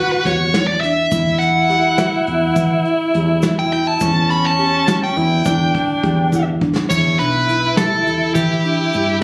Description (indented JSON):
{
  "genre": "progressive instrumental, band music in an uneven meter",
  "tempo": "207 BPM (eighths)",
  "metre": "5/8",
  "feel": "straight",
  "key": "E dorian",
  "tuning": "A4 = 439 Hz",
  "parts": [
    { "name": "dark smooth lead guitar", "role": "melody", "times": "0.0-9.2 s", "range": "G4 to B5", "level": "-20 LUFS", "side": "equal", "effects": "overdrive, slapback echo" },
    { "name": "edgy alto saxophone", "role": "second line", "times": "0.0-9.2 s", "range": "C#4 to F#4", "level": "-23 LUFS", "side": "equal", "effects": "slapback echo" },
    { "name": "buzzing marimba with soft mallets", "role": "arpeggios", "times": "0.0-9.1 s", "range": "D4 to G4", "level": "-28 LUFS", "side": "equal", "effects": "none" },
    { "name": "woody fretless electric bass", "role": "bass", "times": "0.3-9.2 s", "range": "B1 to E3", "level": "-22 LUFS", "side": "equal", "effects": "none" },
    { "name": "vintage brush drum kit", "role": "drums", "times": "0.3-9.1 s", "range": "crash cymbal, hi-hat, kick drum, snare drum", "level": "-24 LUFS", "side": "equal", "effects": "none" },
    { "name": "tube shaker", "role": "percussion", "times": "1.1-9.1 s", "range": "none", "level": "-38 LUFS", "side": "equal", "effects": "none" }
  ],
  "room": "light reverb",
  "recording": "recorded on a phone in the room, club reverb",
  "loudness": "-16 LUFS",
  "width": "mono",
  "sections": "0.0-6.9 A section; 6.9-9.2 B section",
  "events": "lead electric guitar solo 0.0-6.9; drum fill 6.3-6.9",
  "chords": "0.0 Em7; 1.1 A/E; 5.5 Em7"
}